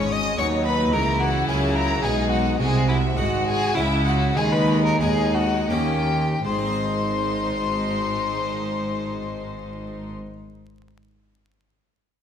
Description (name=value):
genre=classical, baroque-style concerto movement with solo episodes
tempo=78-109 BPM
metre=3/4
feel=straight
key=unclear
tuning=A4 = 441 Hz
part: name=rich chamber violin section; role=melody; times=0.0-10.1 s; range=E5 to D#6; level=-30 LUFS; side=left 5 dB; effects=none
part: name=rich violin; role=melody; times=0.0-10.1 s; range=E4 to D#5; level=-27 LUFS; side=left 2 dB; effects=none
part: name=rich chamber violin section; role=second line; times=0.0-10.1 s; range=C#4 to F#4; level=-28 LUFS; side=left 2 dB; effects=none
part: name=harpsichord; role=accompaniment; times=0.0-10.4 s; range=C#2 to B#4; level=-31 LUFS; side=left 2 dB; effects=none
part: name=warm chamber viola section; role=accompaniment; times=0.0-10.1 s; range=E3 to A#3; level=-29 LUFS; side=right 1 dB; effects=none
part: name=rich chamber double bass section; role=bass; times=0.0-10.1 s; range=G#1 to D#2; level=-27 LUFS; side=right 1 dB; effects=none
part: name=warm studio cello section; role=bass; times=0.0-10.1 s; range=C#2 to D#3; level=-27 LUFS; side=right 1 dB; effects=none
room=wet recital hall reverb, RT60 1.6 s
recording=minimal, uncompressed stereo recording, vinyl crackle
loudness=-20 LUFS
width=side -8 dB against mid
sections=0.0-6.4 A section; 6.4-11.0 B section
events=slowing down 1.8-6.4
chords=0.4 B/D#; 0.9 A#dim/C#; 2.0 G#m/B; 2.6 G#7/B#; 3.8 C#m; 4.4 G#m/D#; 5.7 D#7; 6.4 G#